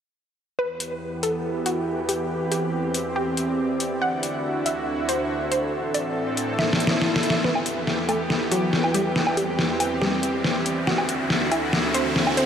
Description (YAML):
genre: heavy wobble dubstep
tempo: 140 BPM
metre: 4/4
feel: half-time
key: E minor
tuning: A4 = 442 Hz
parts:
  - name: wide unison pluck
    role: melody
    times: 0.6-12.5 s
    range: F#3 to F#5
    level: -27 LUFS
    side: equal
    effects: diffuse ambient delay
  - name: supersaw pad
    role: sustained chords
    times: 0.6-12.5 s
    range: D2 to A4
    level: -28 LUFS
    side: right 1 dB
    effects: wide subtle chorus, low-pass filter
  - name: airy breathy pad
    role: texture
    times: 1.0-12.5 s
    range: E3 to C6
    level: -29 LUFS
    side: right 1 dB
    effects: chorus
  - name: dubstep drum kit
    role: drums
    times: 0.8-12.5 s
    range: hi-hat, snare drum, woodblock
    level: -24 LUFS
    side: left 1 dB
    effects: overdrive
  - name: swell and riser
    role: sound effects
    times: 6.8-12.5 s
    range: none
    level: -31 LUFS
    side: left 1 dB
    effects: none
room: wet huge ambient reverb, RT60 7.4 s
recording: dreamy mix soaked in reverb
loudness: -21 LUFS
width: side -8 dB against mid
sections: 0.6-7.4 A section; 7.4-12.5 B section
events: filter sweep on supersaw synth 0.6-7.4; drum fill 6.6-7.4, 7.4-12.5; swell 6.8-7.4; build-up 7.4-12.5; riser 7.4-12.5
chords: 0.6 Em; 2.3 C/E; 4.0 Dadd9; 5.7 Am; 7.4 Em; 9.2 C/E; 10.9 Dadd9